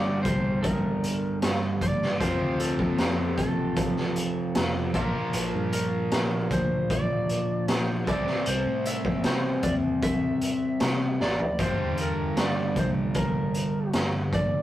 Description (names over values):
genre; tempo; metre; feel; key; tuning
blues rock power trio and southern rock; 77 BPM; 4/4; straight; unclear; A4 = 440 Hz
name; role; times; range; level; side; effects
lightly driven lead guitar; melody; 0.0-14.6 s; A4 to E5; -32 LUFS; equal; none
biting overdriven guitar; riff; 0.0-14.6 s; F2 to C4; -28 LUFS; equal; none
vintage muted fingered electric bass; bass; 0.0-14.5 s; F1 to C3; -34 LUFS; equal; none
raw garage drum kit; drums; 0.2-14.5 s; hi-hat, kick drum, snare drum, toms; -28 LUFS; equal; none
room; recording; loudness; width
moderate studio reverb, RT60 0.5 s; rough rehearsal-room recording, warm saturation; -24 LUFS; side -13 dB against mid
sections
0.0-14.6 A section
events
drum fill 11.2-11.6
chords
0.0 Gm; 2.2 F; 5.0 Bb; 8.1 C; 11.6 Gm